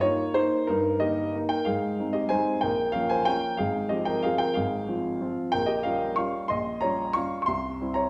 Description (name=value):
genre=classical, piano waltz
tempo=185 BPM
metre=3/4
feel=rubato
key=F minor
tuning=A4 = 440 Hz
part: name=warm upright piano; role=solo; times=0.0-8.1 s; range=Ab1 to Db6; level=-27 LUFS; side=equal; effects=none
room=wet recital hall reverb, RT60 1.5 s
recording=recorded in a church or concert hall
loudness=-27 LUFS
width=mono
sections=0.0-8.1 A section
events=none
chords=0.0 Eb; 1.7 Ab; 2.6 Bbm; 3.6 Fm/Ab; 5.5 Gm7b5/Bb; 7.5 C